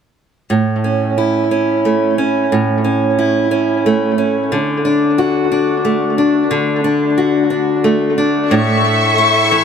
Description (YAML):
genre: pop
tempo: 60 BPM (dotted quarters)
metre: 6/8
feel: straight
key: A major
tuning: A4 = 440 Hz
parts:
  - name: fingerpicked steel-string acoustic guitar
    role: accompaniment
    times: 0.5-9.6 s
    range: A2 to F#4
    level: -13 LUFS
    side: equal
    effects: dub echo
  - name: warm studio string section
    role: sustained chords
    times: 8.5-9.6 s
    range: A4 to C#6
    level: -12 LUFS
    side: left 3 dB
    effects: none
room: moderate plate reverb, RT60 2.9 s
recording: echo-heavy mix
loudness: -12 LUFS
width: side -7 dB against mid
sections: 0.5-8.5 A section; 8.5-9.6 B section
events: none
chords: 0.5 A; 4.5 D; 8.5 A